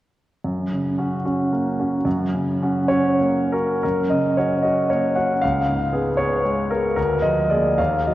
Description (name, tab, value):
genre	classical, romantic character piece for solo piano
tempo	60-79 BPM (dotted quarters)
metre	6/8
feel	rubato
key	F# major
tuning	A4 = 439 Hz
part	clear concert grand piano	solo	0.4-8.1 s	C#2 to F#5	-18 LUFS	equal	none
room	wet concert hall reverb, RT60 2.5 s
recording	worn, warbling old tape, cassette tape, warbly pitch drift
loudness	-18 LUFS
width	side -15 dB against mid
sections	0.4-3.8 A section; 3.8-8.1 B section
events	none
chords	0.4 F#; 5.4 C#7; 7.0 A#7/D